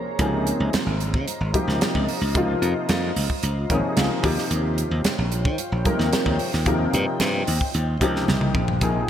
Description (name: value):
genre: electric jazz fusion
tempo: 111 BPM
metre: 4/4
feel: straight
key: unclear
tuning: A4 = 443 Hz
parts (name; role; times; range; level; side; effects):
- glassy FM pad; sustained chords; 0.0-9.1 s; Ab3 to Bb5; -31 LUFS; left 1 dB; ensemble chorus, built-in reverb
- dark grand piano; accompaniment; 0.2-9.1 s; C3 to G5; -26 LUFS; left 2 dB; analog chorus
- glassy slap bass; bass; 0.2-9.0 s; Ab1 to Eb3; -24 LUFS; equal; none
- crisp fusion drum kit; drums; 0.2-8.9 s; hi-hat, kick drum, snare drum, toms; -26 LUFS; right 1 dB; gated reverb
- congas; percussion; 0.2-8.9 s; none; -30 LUFS; right 2 dB; none
room: moderate lush hall reverb, RT60 2.1 s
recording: bright 1980s-style digital production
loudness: -20 LUFS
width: side -10 dB against mid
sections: 0.0-8.8 A section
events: grand piano fill 3.4-4.5; drum fill 8.3-8.8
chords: 0.0 Dbmaj13; 4.2 Eb13